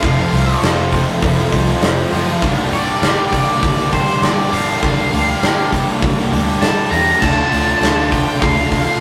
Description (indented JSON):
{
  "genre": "rock, shoegaze and dream pop",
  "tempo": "100 BPM",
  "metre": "4/4",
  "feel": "straight",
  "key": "unclear",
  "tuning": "A4 = 440 Hz",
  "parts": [
    { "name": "octave-fuzz lead guitar", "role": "melody", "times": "0.0-9.0 s", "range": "C5 to Bb5", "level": "-21 LUFS", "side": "equal", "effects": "distortion" },
    { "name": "distorted electric guitar", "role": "riff", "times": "0.0-9.0 s", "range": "F2 to D4", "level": "-27 LUFS", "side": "equal", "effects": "none" },
    { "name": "overdriven electric guitar", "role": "riff", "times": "0.0-9.0 s", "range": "F2 to G4", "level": "-23 LUFS", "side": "equal", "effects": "none" },
    { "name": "raw garage guitar", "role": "riff", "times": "0.0-9.0 s", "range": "F2 to G4", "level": "-24 LUFS", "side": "equal", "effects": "overdrive" },
    { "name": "vintage muted picked electric bass", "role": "bass", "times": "0.0-8.8 s", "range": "F1 to E2", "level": "-24 LUFS", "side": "equal", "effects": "none" },
    { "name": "huge arena drum kit", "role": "drums", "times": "0.0-8.9 s", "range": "crash cymbal, hi-hat, kick drum, snare drum", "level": "-21 LUFS", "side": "equal", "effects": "none" },
    { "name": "tambourine", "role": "percussion", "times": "0.2-9.0 s", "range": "none", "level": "barely audible", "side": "none", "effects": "none" }
  ],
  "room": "wet stone room reverb, RT60 1.2 s",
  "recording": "rough rehearsal-room recording, tube saturation",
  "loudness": "-15 LUFS",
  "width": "mono",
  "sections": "0.0-9.0 A section",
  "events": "none",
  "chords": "0.0 F; 2.4 Gm7; 7.2 Dm"
}